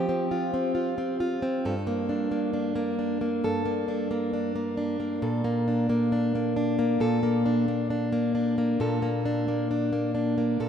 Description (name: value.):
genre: pop.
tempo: 67 BPM.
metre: 4/4.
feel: straight.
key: Bb major.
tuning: A4 = 441 Hz.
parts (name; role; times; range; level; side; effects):
fingerpicked plugged-in steel-string acoustic guitar; solo; 0.0-10.7 s; G2 to A4; -24 LUFS; equal; ping-pong delay.
room: wet lush hall reverb, RT60 2.5 s.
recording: rough home demo mix.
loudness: -24 LUFS.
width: side -8 dB against mid.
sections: 0.0-10.7 A section.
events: none.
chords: 0.0 Fsus2; 1.7 Gmadd9; 5.2 Bbmaj7.